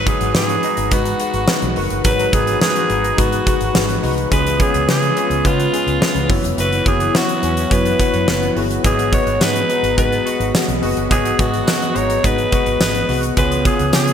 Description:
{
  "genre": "1980s-style pop",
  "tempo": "106 BPM",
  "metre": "4/4",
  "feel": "straight",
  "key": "G# minor",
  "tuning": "A4 = 440 Hz",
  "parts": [
    { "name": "raspy alto saxophone", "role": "melody", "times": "0.0-14.1 s", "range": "E#4 to C#5", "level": "-20 LUFS", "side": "equal", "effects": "none" },
    { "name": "bell-like tine electric piano", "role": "accompaniment", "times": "0.0-14.1 s", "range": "G#2 to D#5", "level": "-21 LUFS", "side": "left 5 dB", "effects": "fast stereo tremolo" },
    { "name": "string machine, violas", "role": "sustained chords", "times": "0.0-14.1 s", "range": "C#3 to B4", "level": "-27 LUFS", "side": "right 1 dB", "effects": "none" },
    { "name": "clean electric guitar", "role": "riff", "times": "0.0-14.1 s", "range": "E3 to G#4", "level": "-26 LUFS", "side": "right 3 dB", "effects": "analog chorus, ping-pong delay" },
    { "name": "vintage muted fingered electric bass", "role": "bass", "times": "0.0-14.1 s", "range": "E#1 to C#3", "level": "-22 LUFS", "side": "right 1 dB", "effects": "none" },
    { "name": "huge arena drum kit", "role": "drums", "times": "0.1-14.1 s", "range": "hi-hat, kick drum, snare drum, tambourine", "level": "-19 LUFS", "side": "right 1 dB", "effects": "gated reverb" }
  ],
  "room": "moderate plate reverb, RT60 1.6 s, studio ambience",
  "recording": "bright 1980s-style digital production",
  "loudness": "-14 LUFS",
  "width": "side -8 dB against mid",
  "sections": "0.0-14.1 A section",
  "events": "none",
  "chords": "0.0 G#m7; 4.3 C#7; 6.3 F#7sus4; 8.8 G#m7; 13.4 C#7",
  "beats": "0.35 0.92 1.48 | 2.05 2.62 3.18 3.75 | 4.31 4.88 5.45 6.01 | 6.58 7.14 7.71 8.28 | 8.84 9.41 9.97 10.54 | 11.11 11.67 12.24 12.80 | 13.37 13.94"
}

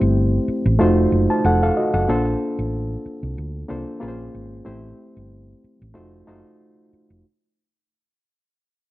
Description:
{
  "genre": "lush 1970s-style soul",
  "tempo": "93 BPM",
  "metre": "4/4",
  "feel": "swing 54% on 16ths",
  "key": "unclear",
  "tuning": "A4 = 437 Hz",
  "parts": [
    { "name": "reed electric piano", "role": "accompaniment", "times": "0.0-7.3 s", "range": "A3 to A5", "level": "-20 LUFS", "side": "equal", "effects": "overdrive" },
    { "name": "hollow-body short-scale fingered electric bass", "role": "bass", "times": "0.0-7.2 s", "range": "F1 to D2", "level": "-21 LUFS", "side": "equal", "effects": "none" }
  ],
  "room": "light reverb, digital ambience",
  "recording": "none",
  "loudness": "-18 LUFS",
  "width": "side -16 dB against mid",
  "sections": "0.0-7.2 A section",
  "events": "fade-out 0.0-7.2",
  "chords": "0.0 Am7; 0.8 F7b9; 2.1 Bbmaj9; 4.0 Bbm7; 4.7 Am7; 6.0 F7b9",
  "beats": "0.16 0.81 1.45 | 2.09 2.74 3.38 4.02 | 4.67 5.31 5.96 6.60"
}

